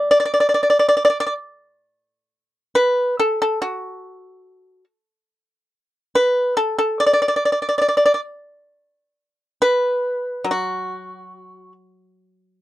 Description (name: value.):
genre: chinese traditional, Chinese solo plucked strings.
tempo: 69 BPM.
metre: 2/4.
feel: rubato.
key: unclear.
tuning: A4 = 438 Hz.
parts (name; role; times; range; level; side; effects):
pipa; solo; 0.0-12.6 s; B2 to D5; -16 LUFS; equal; none.
room: little or no reverb.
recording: dry, close 1970s-style studio recording.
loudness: -16 LUFS.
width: side -15 dB against mid.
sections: 0.0-1.9 A section; 1.9-12.6 B section.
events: none.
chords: none.